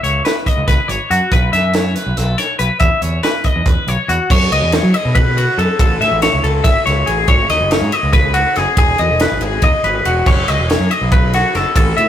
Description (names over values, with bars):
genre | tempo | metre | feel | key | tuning
math rock and midwest emo | 282 BPM (eighths) | 7/8 | straight | unclear | A4 = 440 Hz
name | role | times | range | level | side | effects
twelve-string electric guitar | arpeggios | 0.0-12.1 s | F#4 to E5 | -16 LUFS | left 2 dB | spring reverb
growling fingered electric bass | bass | 0.0-12.1 s | E1 to F#3 | -18 LUFS | equal | overdrive
crisp fusion drum kit | drums | 0.0-12.1 s | crash cymbal, hi-hat, kick drum, ride cymbal, snare drum | -16 LUFS | right 1 dB | none
room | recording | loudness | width
moderate studio reverb, RT60 0.5 s | rough rehearsal-room recording, tube saturation | -12 LUFS | side -10 dB against mid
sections
0.0-4.3 A section; 4.3-12.1 B section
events
none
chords
0.0 C#9sus4; 1.3 B7sus4; 2.8 E5; 4.3 F#m; 5.8 Amaj7; 7.3 G#m7; 8.8 Emaj9; 10.3 F#m